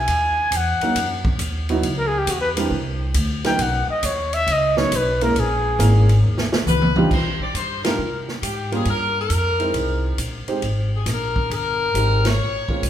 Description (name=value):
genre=jazz, big band swing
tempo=137 BPM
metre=4/4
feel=swing 67% on 8ths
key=C minor from 7.1 s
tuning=A4 = 441 Hz
part: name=breathy trumpet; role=melody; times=0.0-6.3 s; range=F#4 to G#5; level=-21 LUFS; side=left 1 dB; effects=none
part: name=upright bass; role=bass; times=0.0-12.9 s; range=G1 to C3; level=-22 LUFS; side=equal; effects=none
part: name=swinging big-band drum kit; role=drums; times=0.1-12.9 s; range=crash cymbal, hi-hat, kick drum, ride cymbal, snare drum, toms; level=-25 LUFS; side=equal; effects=none
part: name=warm concert grand piano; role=accompaniment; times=0.8-12.8 s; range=B#2 to C5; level=-26 LUFS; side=right 3 dB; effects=none
part: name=bright saxophone section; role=melody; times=6.7-12.9 s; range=G4 to D5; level=-23 LUFS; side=left 3 dB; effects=none
room=wet large studio reverb, RT60 1.4 s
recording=heard from further back in the room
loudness=-18 LUFS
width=side -10 dB against mid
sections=0.0-7.1 A section; 7.1-12.9 B section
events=trumpet solo 0.0-7.1; drum fill 6.2-7.1; band accent 7.8, 12.2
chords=0.1 D#m; 1.8 C#m; 2.7 Csus2; 3.6 Bmaj9; 5.3 A#m7b5; 6.2 D#7; 7.1 Cm11; 8.9 Fm11; 9.7 C7alt; 10.6 Bb7sus2; 12.4 Bbm9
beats=| 0.08 0.52 0.96 1.40 | 1.84 2.28 2.72 3.15 | 3.59 4.03 4.47 4.91 | 5.35 5.79 6.23 6.67 | 7.11 7.54 7.98 8.42 | 8.86 9.30 9.74 10.19 | 10.62 11.06 11.51 11.95 | 12.39 12.83